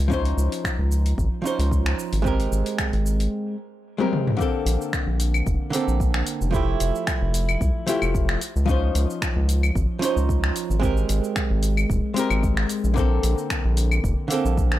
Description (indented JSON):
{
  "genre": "sunset chillout",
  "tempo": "112 BPM",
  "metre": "4/4",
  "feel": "swing 53% on 16ths",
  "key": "unclear",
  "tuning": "A4 = 441 Hz",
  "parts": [
    { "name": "round analog bass", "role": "bass", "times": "0.0-14.8 s", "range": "Eb1 to Db2", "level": "-22 LUFS", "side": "equal", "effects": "tube saturation" },
    { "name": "archtop guitar, miked and amplified", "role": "accompaniment", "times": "0.1-14.8 s", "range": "D3 to C5", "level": "-26 LUFS", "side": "moving between left 6 dB and right 7 dB", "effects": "auto-pan, tape echo" },
    { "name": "deep house drum kit", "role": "drums", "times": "0.1-14.8 s", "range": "cabasa, claves, finger snaps, hi-hat, toms", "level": "-28 LUFS", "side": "left 1 dB", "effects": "none" },
    { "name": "electronic kick drum", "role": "drums", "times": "0.1-14.7 s", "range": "none", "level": "-26 LUFS", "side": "equal", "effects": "none" }
  ],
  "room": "little or no reverb",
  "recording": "dry, gritty hardware recording",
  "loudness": "-20 LUFS",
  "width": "side -14 dB against mid",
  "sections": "0.0-4.4 A section; 4.4-14.8 B section",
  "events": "break 3.3-4.4; drum fill 4.0-4.4",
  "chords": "0.0 Dbmaj9; 2.3 Abmaj9; 4.4 Bbmaj9; 6.5 Fmaj9; 8.4 Dbmaj9; 10.8 Abmaj9; 13.0 Bbmaj9"
}